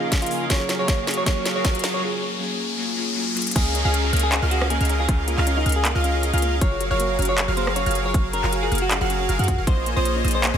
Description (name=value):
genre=future bass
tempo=157 BPM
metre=4/4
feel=swing 54% on 16ths, half-time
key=Db major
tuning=A4 = 441 Hz
part: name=semi-hollow electric guitar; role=melody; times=0.0-10.6 s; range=Eb4 to Db5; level=-27 LUFS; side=right 1 dB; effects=wide subtle chorus, sidechain pumping, digital delay
part: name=glassy digital keys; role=accompaniment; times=0.0-3.6 s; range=F3 to Ab4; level=-29 LUFS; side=left 2 dB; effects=chorus, sidechain pumping, ping-pong delay
part: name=ethereal airy pad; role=sustained chords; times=0.0-2.0 s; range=Db3 to Ab4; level=-38 LUFS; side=equal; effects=ensemble chorus, built-in reverb, sidechain pumping
part: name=big bright polysynth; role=riff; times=0.0-10.6 s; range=Gb3 to F5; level=-26 LUFS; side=right 1 dB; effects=wide subtle chorus, sidechain pumping
part: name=riser and downlifter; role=sound effects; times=0.3-6.6 s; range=none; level=-30 LUFS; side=left 2 dB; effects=none
part: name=electronic kick drum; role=drums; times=0.1-9.8 s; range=none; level=-21 LUFS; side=equal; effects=none
part: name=trap drum kit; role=drums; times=0.1-10.5 s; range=crash cymbal, handclaps, hi-hat, rim click, snare drum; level=-26 LUFS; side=left 1 dB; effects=high-pass filter on hats, high-pass filter on snare, high-pass filter on cymbals
part: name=soft round pluck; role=arpeggios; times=3.6-10.6 s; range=Bb3 to Ab4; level=-35 LUFS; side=left 3 dB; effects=chorus, sidechain pumping, ping-pong delay
part: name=wide unison pluck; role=arpeggios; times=3.6-10.6 s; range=Eb6 to F6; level=-34 LUFS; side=right 1 dB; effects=sidechain pumping
part: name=warm 808-style bass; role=bass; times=3.6-10.6 s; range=Gb1 to Gb2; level=-23 LUFS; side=equal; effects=sidechain pumping
room=light reverb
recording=none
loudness=-19 LUFS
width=side -8 dB against mid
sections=0.0-3.6 A section; 3.6-10.6 B section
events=build-up 0.0-3.6; drum fill 0.0-2.0, 3.4; riser 0.3-3.6; break 2.0-3.6; drop 3.6-10.6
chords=0.0 Db6; 0.5 Gbmaj9; 3.6 Db6; 6.6 Gbmaj9; 9.7 Bbm11